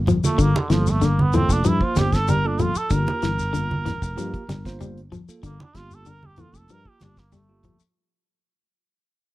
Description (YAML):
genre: afrobeat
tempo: 95 BPM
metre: 4/4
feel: straight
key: G dorian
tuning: A4 = 441 Hz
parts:
  - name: fingered electric bass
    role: bass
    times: 0.0-7.8 s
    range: F1 to G2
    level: -24 LUFS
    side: equal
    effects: none
  - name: electric guitar at the edge of break-up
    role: arpeggios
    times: 0.1-7.8 s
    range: D3 to G3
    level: -26 LUFS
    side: left 4 dB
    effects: none
  - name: damped 70s drum kit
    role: drums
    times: 0.1-7.9 s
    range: hi-hat, kick drum, snare drum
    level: -26 LUFS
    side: equal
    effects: none
  - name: congas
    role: percussion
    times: 0.1-7.8 s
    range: none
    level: -24 LUFS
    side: right 2 dB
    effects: none
  - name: shekere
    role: percussion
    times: 0.1-8.0 s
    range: none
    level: -32 LUFS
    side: left 3 dB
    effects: none
  - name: bell-like tine electric piano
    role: accompaniment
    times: 0.2-7.7 s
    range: F3 to C5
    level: -30 LUFS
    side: right 4 dB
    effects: none
  - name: trombone with metal mute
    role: melody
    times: 0.3-7.8 s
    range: D3 to Bb4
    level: -27 LUFS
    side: right 2 dB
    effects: none
room: small room ambience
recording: dry, close 1970s-style studio recording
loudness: -19 LUFS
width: side -17 dB against mid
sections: 0.0-8.0 A section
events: fade-out 0.0-8.0; trombone solo 0.0-8.0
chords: 0.0 Gm9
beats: | 0.39 1.02 1.65 2.28 | 2.91 3.54 4.17 4.80 | 5.43 6.06 6.69 7.32